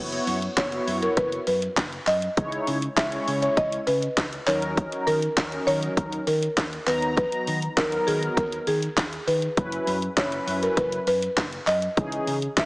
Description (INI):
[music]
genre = dance-pop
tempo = 100 BPM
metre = 4/4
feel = straight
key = unclear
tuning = A4 = 441 Hz
[part]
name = buzzing marimba with medium mallets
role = melody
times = 0.0-12.7 s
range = G#4 to E5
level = -26 LUFS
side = equal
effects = digital delay
[part]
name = mellow synth brass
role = accompaniment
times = 0.0-12.7 s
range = D#3 to A#5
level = -28 LUFS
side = equal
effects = chorus, sidechain pumping
[part]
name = vintage muted fingered electric bass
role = bass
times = 0.0-12.7 s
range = F#1 to D#3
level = -32 LUFS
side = equal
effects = sidechain pumping
[part]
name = house drum kit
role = drums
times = 0.1-12.7 s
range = handclaps, hi-hat, kick drum, snare drum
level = -26 LUFS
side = equal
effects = none
[sound]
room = light reverb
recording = heavily compressed radio sound, small speaker sound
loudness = -22 LUFS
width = side -25 dB against mid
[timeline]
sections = 0.0-12.7 A section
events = none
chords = 0.0 F#7sus4; 2.4 C#madd9; 4.5 D#m7; 6.9 Bmaj7/D#; 9.6 F#7sus4; 12.0 C#madd9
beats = 0.57 1.17 1.77 | 2.37 2.97 3.57 4.17 | 4.77 5.37 5.97 6.57 | 7.17 7.77 8.37 8.97 | 9.57 10.17 10.77 11.37 | 11.97 12.57